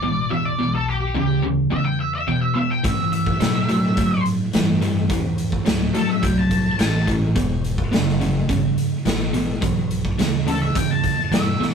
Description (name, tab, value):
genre	blues rock power trio and southern rock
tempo	106 BPM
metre	4/4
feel	straight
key	E minor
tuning	A4 = 440 Hz
part	octave-fuzz lead guitar	melody	0.0-7.1, 10.5-11.6 s	G4 to A5	-24 LUFS	equal	wah, distortion
part	distorted electric guitar	riff	0.0-11.7 s	E2 to F#3	-21 LUFS	equal	distortion
part	upright bass	bass	0.0-11.6 s	E1 to B2	-27 LUFS	equal	none
part	raw garage drum kit	drums	2.8-11.7 s	hi-hat, kick drum, snare drum	-23 LUFS	right 1 dB	none
room	light reverb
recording	rough rehearsal-room recording, tube saturation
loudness	-18 LUFS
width	side -6 dB against mid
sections	0.0-11.7 A section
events	none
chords	0.0 Em7; 2.8 Am7; 7.4 Em7